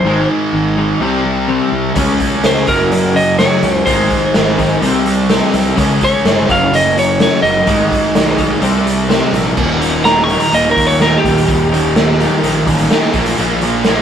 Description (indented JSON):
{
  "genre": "quiet-loud alternative rock",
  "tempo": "126 BPM",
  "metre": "4/4",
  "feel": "straight",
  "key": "Eb major from 9.6 s",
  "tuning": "A4 = 440 Hz",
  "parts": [
    { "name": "lightly driven lead guitar", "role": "melody", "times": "0.0-12.6 s", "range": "G4 to Db6", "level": "-14 LUFS", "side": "equal", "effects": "none" },
    { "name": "twelve-string electric guitar", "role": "arpeggios", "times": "0.0-14.0 s", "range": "Eb2 to Eb4", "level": "-20 LUFS", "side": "left 4 dB", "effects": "none" },
    { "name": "fuzz guitar", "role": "riff", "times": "0.0-14.0 s", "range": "Eb2 to Db4", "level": "-16 LUFS", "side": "right 1 dB", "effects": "distortion" },
    { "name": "fuzz fingered electric bass", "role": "bass", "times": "0.0-14.0 s", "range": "Eb1 to Eb2", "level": "-20 LUFS", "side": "right 1 dB", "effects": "overdrive" },
    { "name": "raw garage drum kit", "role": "drums", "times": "2.0-14.0 s", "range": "crash cymbal, hi-hat, kick drum, snare drum", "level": "-16 LUFS", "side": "equal", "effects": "none" }
  ],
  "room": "moderate stone room reverb, RT60 0.9 s",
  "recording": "rough rehearsal-room recording",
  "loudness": "-11 LUFS",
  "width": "side -8 dB against mid",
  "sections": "0.0-9.6 A section; 9.6-14.0 B section",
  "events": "lead electric guitar solo 9.6-14.0",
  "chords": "0.1 Ab5; 1.0 C5; 2.0 Db5; 2.7 Gb; 3.9 Ab; 4.8 C5; 5.8 Db5; 6.5 Gb5; 7.7 Ab5; 8.6 C5; 9.6 Eb; 13.1 Bb5"
}